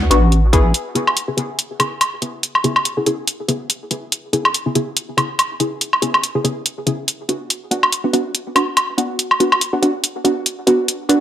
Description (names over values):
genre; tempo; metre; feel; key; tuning
deep dubstep; 142 BPM; 4/4; swing 56% on 16ths, half-time; C# phrygian; A4 = 440 Hz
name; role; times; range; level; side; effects
deep soft wobble bass; bass; 0.0-0.7 s; A1; -13 LUFS; equal; chorus
filtered dub chord stab; stabs; 0.1-11.2 s; C#3 to G#4; -19 LUFS; equal; analog chorus, cassette tape, dub echo
electronic hi-hat and woodblock; drums; 0.1-11.2 s; none; -16 LUFS; equal; none
electronic kick drum; drums; 0.5-0.6 s; none; -14 LUFS; equal; none
room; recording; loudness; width
moderate digital room reverb, RT60 1.1 s, digital ambience; none; -16 LUFS; side -11 dB against mid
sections
0.7-11.2 A section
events
filter sweep on synth stab 0.7-11.2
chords
0.0 Bm; 0.7 C#m7; 7.5 Bm